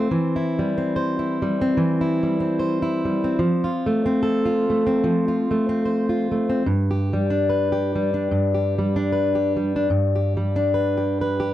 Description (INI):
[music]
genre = folk, solo fingerstyle acoustic guitar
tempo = 73 BPM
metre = 4/4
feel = swing 57% on 8ths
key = G mixolydian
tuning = A4 = 439 Hz
[part]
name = fingerpicked plugged-in steel-string acoustic guitar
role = solo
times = 0.0-11.5 s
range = G2 to C5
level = -19 LUFS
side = equal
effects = none
[sound]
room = studio ambience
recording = dry, close 1970s-style studio recording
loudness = -19 LUFS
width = side -13 dB against mid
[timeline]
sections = 0.0-9.9 A section; 9.9-11.5 B section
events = none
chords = 0.1 C/E; 3.4 F; 6.7 G